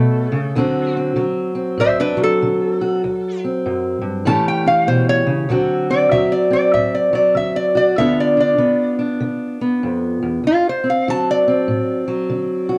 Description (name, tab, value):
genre	acoustic country blues, solo or duo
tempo	97 BPM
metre	4/4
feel	swing 63% on 8ths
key	D mixolydian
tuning	A4 = 440 Hz
part	lap resonator guitar	melody	0.0-12.8 s	D4 to A5	-20 LUFS	equal	plate reverb
part	fingerpicked steel-string acoustic guitar	accompaniment	0.0-12.8 s	D2 to G4	-20 LUFS	equal	none
room	moderate small room reverb, RT60 0.5 s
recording	dark, warm production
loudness	-18 LUFS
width	mono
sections	0.0-5.5 A section; 5.5-12.8 A section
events	resonator guitar played with a steel bar solo 0.0-5.5, 5.5-12.8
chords	0.0 A; 0.6 D7; 4.3 A7; 5.5 D7; 8.0 G7; 10.4 D7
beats	| 0.57 1.19 1.81 2.42 | 3.04 3.66 4.27 4.89 | 5.51 6.13 6.74 7.36 | 7.98 8.60 9.21 9.83 | 10.45 11.07 11.69 12.30